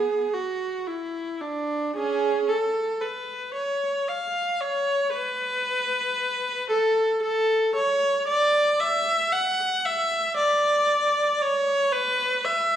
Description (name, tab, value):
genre	classical, baroque-style suite movement for unaccompanied viola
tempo	57 BPM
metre	3/4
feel	rubato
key	unclear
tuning	A4 = 444 Hz
part	clear viola	solo	0.0-12.8 s	B3 to F#5	-22 LUFS	equal	none
room	moderate recital hall reverb, RT60 1.5 s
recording	studio ambience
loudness	-22 LUFS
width	side -10 dB against mid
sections	0.0-12.8 A section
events	none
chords	none